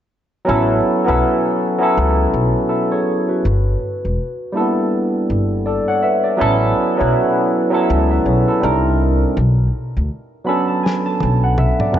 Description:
R&B, neo-soul; 81 BPM; 4/4; swing 60% on 16ths; A major; A4 = 440 Hz
barky tine electric piano; accompaniment; 0.4-12.0 s; F#3 to B5; -16 LUFS; equal; overdrive, lush chorus
upright bass; bass; 0.5-11.7 s; E1 to D2; -18 LUFS; equal
warm soul drum kit; drums; 10.9-12.0 s; snare drum, toms; -21 LUFS; equal
moderate plate reverb, RT60 2.7 s; dreamy mix soaked in reverb, nothing above 7.9 kHz; -14 LUFS; side -10 dB against mid
0.5-12.0 A section
tine electric piano fill 10.1-12.0; drum fill 10.8-12.0
0.5 A69; 3.4 G6; 6.4 A69; 8.6 Cm9; 9.4 Bm9

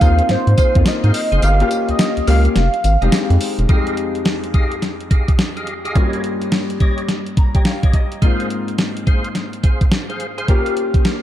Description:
R&B, new jack swing; 106 BPM; 4/4; swing 63% on 16ths; F minor; A4 = 440 Hz
warm velvety synth lead; melody; 0.0-3.4 s; C5 to F5; -20 LUFS; right 1 dB; chorus, diffuse ambient delay
clear baby grand piano; accompaniment; 0.0-11.2 s; F2 to Bb5; -23 LUFS; left 4 dB; wide subtle chorus
percussive tonewheel organ; stabs; 0.0-10.8 s; G4 to F5; -26 LUFS; equal; overdrive, chorus vibrato, slow rotary speaker, diffuse ambient delay
round analog bass; bass; 0.0-3.7 s; E1 to Ab2; -14 LUFS; equal
clean 12-bit digital drum machine; drums; 0.0-11.2 s; hi-hat, kick drum, snare drum, tambourine; -16 LUFS; equal
moderate plate reverb, RT60 1.9 s; dreamy mix soaked in reverb; -14 LUFS; side -12 dB against mid
0.0-3.7 A section; 3.7-11.2 B section
kick muted 1.4-3.7; grand piano fill 7.1-8.2
0.0 Ab6; 1.4 Gm7b5; 2.6 Fm7; 3.7 Fm9; 6.0 Eb7/G; 8.2 Ab6; 10.5 Gm7b5

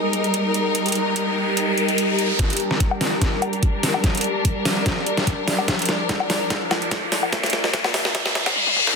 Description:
heavy wobble dubstep; 146 BPM; 4/4; swing 53% on 16ths, half-time; G minor; A4 = 440 Hz
bright studio string section; sustained chords; 0.0-8.5 s; F3 to Bb4; -24 LUFS; equal; sidechain pumping, low-pass filter
riser and reverse cymbal; sound effects; 0.6-9.0 s; -25 LUFS; left 2 dB
granular cloud pad; texture; 0.0-8.6 s; F4 to Bb5; -27 LUFS; left 1 dB; built-in reverb, sidechain pumping
dubstep drum kit; drums; 0.1-8.9 s; hi-hat, snare drum, toms, woodblock; -22 LUFS; equal
electronic kick drum; drums; 2.4-8.2 s; -22 LUFS; equal
light reverb, digital ambience; dense, heavily limited modern master, high-pass filter; -18 LUFS; side -4 dB against mid
0.0-2.4 A section; 2.4-9.0 B section
riser 0.6-2.4, 2.4-9.0; build-up 2.4-9.0; drum fill 2.4-8.6, 8.6-9.0; filter sweep on string section 2.4-9.0; filter sweep 2.4-9.0; reverse cymbal 8.1-9.0
0.0 Eb; 2.4 Gm; 5.7 Bb

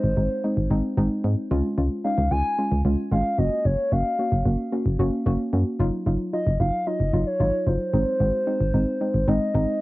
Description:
synth-pop; 112 BPM; 4/4; straight; A4 = 440 Hz
hollow clarinet-like synth lead; melody; 0.0-9.8 s; C5 to Ab5; -26 LUFS; equal; chorus, analog delay
soft round pluck; accompaniment; 0.0-9.7 s; Gb3 to Gb4; -26 LUFS; equal; chorus
solid FM bass; bass; 0.0-9.7 s; Gb1 to Ab2; -22 LUFS; equal
little or no reverb; worn, warbling old tape, cassette tape, warbly pitch drift; -21 LUFS; side -19 dB against mid
0.0-9.8 A section
0.0 Ab; 1.5 Db; 3.4 Gb; 5.8 Ebmadd9/Gb; 7.9 Ab

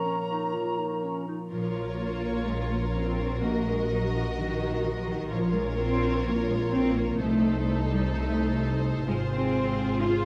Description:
classical, dramatic, fast romantic movement for symphony orchestra; 127 BPM; 4/4; straight; Bb minor; A4 = 440 Hz
dark cor anglais; second line; 0.0-1.3 s; Db5; -41 LUFS; equal
flute section; second line; 0.0-1.3 s; Bb5; -36 LUFS; equal
mellow bassoon; accompaniment; 0.0-1.2 s; Bb3; -36 LUFS; equal
concert harp; arpeggios; 0.0-10.2 s; Ab2 to Eb5; -36 LUFS; equal
mellow clarinet; second line; 0.1-1.4 s; Db4 to F4; -39 LUFS; equal
rich symphonic violin section; melody; 1.5-10.2 s; C5 to Eb5; -41 LUFS; equal
warm symphonic violin section; second line; 1.5-10.2 s; Ab4 to Bb4; -39 LUFS; equal
rich symphonic viola section; accompaniment; 1.5-10.2 s; Eb4 to Gb4; -37 LUFS; equal
warm studio cello section; bass; 1.5-10.2 s; Eb3 to F4; -31 LUFS; equal
warm studio double bass section; bass; 1.5-10.2 s; Ab1 to C2; -33 LUFS; equal
wet scoring stage reverb, RT60 1.9 s; dark, warm production; -28 LUFS; mono
0.0-1.5 A section; 1.5-10.2 A section
0.0 Bbm; 3.4 Ebm/Bb; 5.3 Bbm; 7.2 Adim/C; 9.1 Fm/Ab

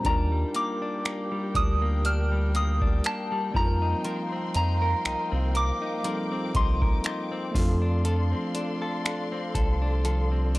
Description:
contemporary R&B; 60 BPM; 4/4; swing 54% on 16ths; A4 = 440 Hz
soft synth bell; melody; 0.0-7.5 s; A5 to F6; -30 LUFS; equal; chorus, phaser, tape echo
bell-like tine electric piano; accompaniment; 0.0-10.6 s; G3 to Bb4; -35 LUFS; right 1 dB
dark studio string section; sustained chords; 0.0-10.6 s; Bb3 to D6; -37 LUFS; left 1 dB
direct-recorded clean electric guitar; arpeggios; 0.0-10.6 s; Bb2 to Bb4; -32 LUFS; left 2 dB
booming analog drum machine; drums; 0.0-10.6 s; finger snaps, hi-hat, kick drum; -27 LUFS; equal
round analog bass; bass; 0.1-10.6 s; C2 to F2; -25 LUFS; equal
digital ambience; dry, gritty hardware recording, transformer saturation, cassette tape; -24 LUFS; side -19 dB against mid
0.0-10.6 A section
0.0 Ebmaj7; 3.5 F7sus4; 7.5 Dm7

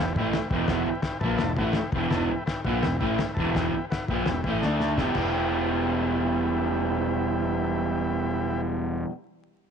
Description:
garage rock duo or trio; 168 BPM; 4/4; straight; E minor; A4 = 445 Hz
combo organ; sustained chords; 0.0-8.6 s; A4 to A5; -33 LUFS; equal
crunchy overdriven guitar; riff; 0.0-9.1 s; E2 to G4; -26 LUFS; right 1 dB
fuzz fingered electric bass; bass; 0.0-9.0 s; E1 to D2; -32 LUFS; equal; overdrive, tube saturation
cloth-damped thuddy drum kit; drums; 0.2-5.3 s; crash cymbal, kick drum, snare drum, toms; -30 LUFS; left 2 dB
light reverb; 1960s-style stereo, vinyl crackle, nothing above 10.5 kHz; -24 LUFS; side -7 dB against mid
0.0-5.0 A section; 5.0-7.9 B section
drum fill 4.6-5.0
0.0 Em; 4.6 D5; 5.0 Em

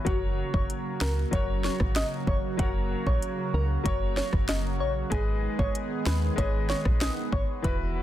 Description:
dancehall; 95 BPM; 4/4; straight; G# minor; A4 = 443 Hz
clear grand piano; accompaniment; 0.0-8.0 s; E3 to D#5; -35 LUFS; left 4 dB
warm analog pad; sustained chords; 0.0-8.0 s; C#3 to G#4; -34 LUFS; right 3 dB; chorus, sidechain pumping
soft struck synth lead; melody; 0.1-7.7 s; F#4 to D#5; -34 LUFS; left 1 dB; chorus, tape echo
woody FM bass; bass; 0.1-8.0 s; E1 to D#2; -29 LUFS; equal
afro-pop drum kit; drums; 0.1-7.8 s; hi-hat, kick drum, rim click, snare drum; -29 LUFS; equal; overdrive
digital ambience; dense, heavily limited modern master; -25 LUFS; side -12 dB against mid
0.0-8.0 A section
0.1 F#; 5.1 G#m

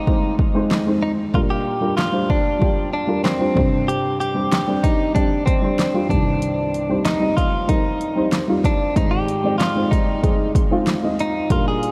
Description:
piano-driven pop; 94 BPM; 4/4; straight; A4 = 440 Hz
direct-recorded clean electric guitar; melody; 0.0-11.9 s; C4 to Ab4; -25 LUFS; equal; subtle chorus
dark upright piano; accompaniment; 0.0-11.9 s; C2 to Eb5; -24 LUFS; equal
deep house drum kit; drums; 0.1-11.9 s; handclaps, hi-hat, kick drum, snare drum; -23 LUFS; equal; overdrive
moderate huge ambient reverb, RT60 6.0 s; dreamy mix soaked in reverb; -19 LUFS; mono
0.0-11.9 A section
0.0 Ab; 1.3 Bb6; 3.6 Gsus4; 6.1 Cm; 9.0 Ab

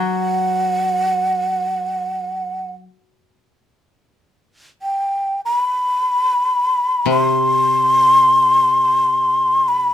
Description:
japanese traditional, Japanese chamber music; free time; A4 = 440 Hz
breathy mellow shakuhachi; melody; 0.0-9.9 s; F#5 to C6; -15 LUFS; equal
koto; accompaniment; 0.0-9.9 s; C3 to F#3; -24 LUFS; left 4 dB
light reverb; -14 LUFS; side -11 dB against mid
0.0-9.9 A section

